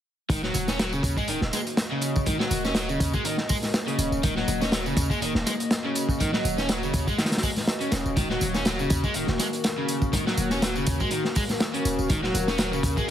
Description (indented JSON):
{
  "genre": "breakbeat, breaks",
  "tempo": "122 BPM",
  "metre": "4/4",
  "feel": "swing 54% on 16ths",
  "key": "Eb minor pentatonic",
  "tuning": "A4 = 440 Hz",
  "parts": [
    { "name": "warbly tape-like pad", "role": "sustained chords", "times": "0.9-13.1 s", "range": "Eb3 to Eb5", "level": "-32 LUFS", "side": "left 1 dB", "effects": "chorus, built-in reverb, phaser, sidechain pumping" },
    { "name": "crunchy overdriven guitar", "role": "riff", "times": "0.3-13.1 s", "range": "Db3 to Db4", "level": "-28 LUFS", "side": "equal", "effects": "digital delay" },
    { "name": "warm 808-style bass", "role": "bass", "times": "0.3-13.1 s", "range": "Eb1 to Eb2", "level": "-30 LUFS", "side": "equal", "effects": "none" },
    { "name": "crunchy breakbeat drum kit", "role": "drums", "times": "0.3-13.1 s", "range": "hi-hat, kick drum, snare drum", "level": "-26 LUFS", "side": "equal", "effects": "none" },
    { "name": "tambourine", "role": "drums", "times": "0.3-13.1 s", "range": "none", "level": "-36 LUFS", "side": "right 2 dB", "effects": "none" },
    { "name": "congas", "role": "percussion", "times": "0.3-12.5 s", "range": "none", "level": "-36 LUFS", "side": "left 2 dB", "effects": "none" }
  ],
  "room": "light reverb, studio reverb",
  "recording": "heavily compressed radio sound, multiband compression",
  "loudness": "-23 LUFS",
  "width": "side -10 dB against mid",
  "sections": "0.3-13.1 A section",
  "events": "none",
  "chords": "0.3 Ebm"
}